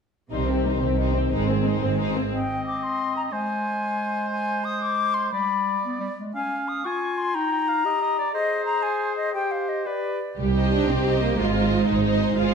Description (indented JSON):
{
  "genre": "cinematic, heroic adventure film score",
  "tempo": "120 BPM (dotted quarters)",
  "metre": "6/8",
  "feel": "straight",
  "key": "C minor",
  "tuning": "A4 = 442 Hz",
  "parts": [
    { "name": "warm symphonic violin section", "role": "melody", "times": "0.3-2.3, 10.6-12.5 s", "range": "G4 to F5", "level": "-34 LUFS", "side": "left 4 dB", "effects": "none" },
    { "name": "rich symphonic violin section", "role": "second line", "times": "0.3-2.3, 10.5-12.5 s", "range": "C4 to C5", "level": "-29 LUFS", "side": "left 1 dB", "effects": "none" },
    { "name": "rich symphonic viola section", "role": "accompaniment", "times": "0.3-2.3, 10.4-12.5 s", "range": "G3 to G4", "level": "-28 LUFS", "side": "right 1 dB", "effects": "none" },
    { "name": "mellow French horn section", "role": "sustained chords", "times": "0.3-2.1 s", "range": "Eb3 to C4", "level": "-28 LUFS", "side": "left 5 dB", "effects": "none" },
    { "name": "clear symphonic double bass section", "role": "bass", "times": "0.3-2.3, 10.4-12.5 s", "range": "Ab1 to C2", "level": "-26 LUFS", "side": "right 3 dB", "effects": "none" },
    { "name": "rich symphonic cello section", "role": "bass", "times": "0.3-2.3, 10.4-12.5 s", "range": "Ab2 to D4", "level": "-25 LUFS", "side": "right 4 dB", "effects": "none" },
    { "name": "bright clarinet", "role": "second line", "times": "2.3-10.2 s", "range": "G3 to Ab4", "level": "-30 LUFS", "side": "left 2 dB", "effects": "none" },
    { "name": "bright oboe", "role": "second line", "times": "2.3-10.2 s", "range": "B4 to Ab5", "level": "-30 LUFS", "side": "right 2 dB", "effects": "none" },
    { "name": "silver concert flute", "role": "second line", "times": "2.3-10.4 s", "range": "D5 to Eb6", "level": "-25 LUFS", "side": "left 4 dB", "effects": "none" }
  ],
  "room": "moderate scoring stage reverb, RT60 1.6 s",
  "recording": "none",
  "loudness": "-22 LUFS",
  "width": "side -6 dB against mid",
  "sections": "0.3-2.3 A section; 2.3-10.4 B section; 10.4-12.5 B section",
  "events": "none",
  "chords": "0.3 Cm; 1.3 Ab; 2.3 Cm; 3.3 Ab; 5.3 G; 6.3 Db; 7.3 Eb; 8.3 Ab; 9.3 Gsus4; 9.9 G; 10.4 Cm; 11.4 Ab",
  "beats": "| 0.32 0.83 | 1.32 1.82 | 2.34 2.84 | 3.33 3.83 | 4.32 4.82 | 5.33 5.83 | 6.35 6.85 | 7.35 7.84 | 8.33 8.83 | 9.34 9.86 | 10.38 10.88 | 11.38 11.88 | 12.38"
}